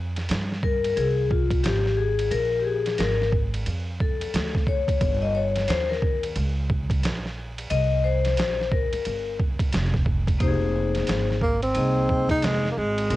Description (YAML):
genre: hip hop, jazz-hop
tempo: 89 BPM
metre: 4/4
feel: swing 61% on 16ths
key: F minor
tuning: A4 = 440 Hz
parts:
  - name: upright bass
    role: bass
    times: 0.0-13.2 s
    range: F1 to G2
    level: -26 LUFS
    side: right 1 dB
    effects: none
  - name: trip hop sampler-style drum kit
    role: drums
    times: 0.2-13.2 s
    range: hi-hat, kick drum, ride cymbal, snare drum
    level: -27 LUFS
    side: right 1 dB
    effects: cassette tape
  - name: vibraphone with medium hard mallets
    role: accompaniment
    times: 0.6-13.2 s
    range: Bb3 to Eb5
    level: -26 LUFS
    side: left 5 dB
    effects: cassette tape, plate reverb
  - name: breathy tenor saxophone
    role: melody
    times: 11.4-13.2 s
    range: Ab3 to Eb4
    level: -23 LUFS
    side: right 1 dB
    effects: cassette tape
room: light reverb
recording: home recording on cassette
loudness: -21 LUFS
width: side -16 dB against mid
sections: 0.0-10.4 A section; 10.4-13.2 B section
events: vibraphone solo 0.0-10.4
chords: 0.0 Fmadd9; 2.3 Bb5; 4.3 D5; 5.0 Gdim; 7.7 C5; 9.7 N.C.; 10.4 Fm7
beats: 0.29 0.97 1.64 | 2.31 2.99 3.66 4.34 | 5.01 5.69 6.36 7.03 | 7.71 8.38 9.06 9.73 | 10.40 11.08 11.75 12.43 | 13.10